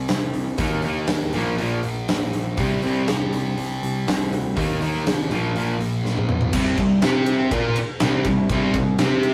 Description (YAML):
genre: hard rock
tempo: 121 BPM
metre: 4/4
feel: straight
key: C minor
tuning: A4 = 440 Hz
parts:
  - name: sludgy distorted guitar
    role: riff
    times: 0.0-9.3 s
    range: Bb2 to C5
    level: -28 LUFS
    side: equal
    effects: overdrive
  - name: picked electric bass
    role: bass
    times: 0.0-9.3 s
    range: Bb1 to C3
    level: -31 LUFS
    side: equal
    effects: none
  - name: big rock drum kit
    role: drums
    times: 0.1-9.3 s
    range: crash cymbal, hi-hat, kick drum, ride cymbal, snare drum, toms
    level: -27 LUFS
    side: equal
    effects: none
  - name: crunchy overdriven guitar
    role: riff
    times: 0.6-9.3 s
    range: Bb2 to C5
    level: -27 LUFS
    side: equal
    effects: none
  - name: distorted electric guitar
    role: riff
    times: 0.6-9.3 s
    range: Bb2 to C5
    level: -28 LUFS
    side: equal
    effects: distortion
room: moderate studio reverb, RT60 0.5 s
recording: rough rehearsal-room recording, warm saturation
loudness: -22 LUFS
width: mono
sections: 0.0-6.5 A section; 6.5-9.3 B section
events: drum fill 6.0-6.5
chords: 0.0 C5; 0.6 Eb5; 1.3 Bb5; 2.6 C5; 4.6 Eb5; 5.3 Bb5; 6.5 C5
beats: 0.10 | 0.60 1.09 1.59 2.09 | 2.58 3.08 3.57 4.07 | 4.56 5.06 5.55 6.05 | 6.54 7.03 7.53 8.02 | 8.51 9.00